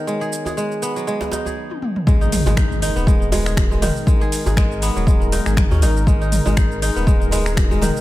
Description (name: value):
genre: afro house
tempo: 120 BPM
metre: 4/4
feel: swing 56% on 16ths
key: G# minor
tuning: A4 = 440 Hz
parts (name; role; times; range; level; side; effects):
- warm analog pad; sustained chords; 0.0-8.0 s; G#3 to C#5; -29 LUFS; left 2 dB; chorus, sidechain pumping
- kora; arpeggios; 0.0-8.0 s; D#3 to G#4; -23 LUFS; right 1 dB; sidechain pumping, digital delay
- deep house drum kit; drums; 0.1-8.0 s; finger snaps, hi-hat, shaker, toms; -25 LUFS; equal; overdrive, studio reverb
- djembe; percussion; 0.5-7.9 s; none; -28 LUFS; right 3 dB; none
- electronic kick drum; drums; 2.1-7.7 s; none; -17 LUFS; equal; overdrive, studio reverb
- impact; sound effects; 2.1-4.1 s; none; -26 LUFS; left 1 dB; none
- warm sub bass; bass; 2.5-7.9 s; D#1 to D#2; -20 LUFS; equal; sidechain pumping
room: little or no reverb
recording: none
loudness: -16 LUFS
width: side -16 dB against mid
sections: 0.0-2.1 A section; 2.1-8.0 B section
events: stop 1.6-2.1; drum fill 1.7-2.1; drop 2.1-8.0; impact 2.1-4.1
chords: 0.0 B; 2.1 G#m7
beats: | 0.07 0.57 1.07 1.57 | 2.07 2.57 3.07 3.57 | 4.07 4.57 5.07 5.57 | 6.07 6.57 7.07 7.57